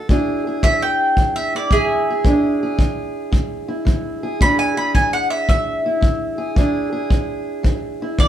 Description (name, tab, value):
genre	acoustic country blues, solo or duo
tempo	111 BPM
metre	4/4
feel	swing 67% on 8ths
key	E mixolydian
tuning	A4 = 436 Hz
part	fingerpicked steel-string acoustic guitar	accompaniment	0.0-8.3 s	E3 to G#4	-22 LUFS	right 1 dB	none
part	kick drum	drums	0.1-8.3 s	none	-18 LUFS	equal	none
part	mandolin	melody	0.6-8.3 s	G#4 to B5	-18 LUFS	equal	plate reverb
room	wet small room reverb, RT60 0.5 s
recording	heard from further back in the room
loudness	-16 LUFS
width	side -10 dB against mid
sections	0.1-8.3 A section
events	none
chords	0.1 E7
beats	| 0.09 0.63 1.17 1.71 | 2.25 2.79 3.33 3.87 | 4.41 4.95 5.49 6.03 | 6.57 7.11 7.65 8.19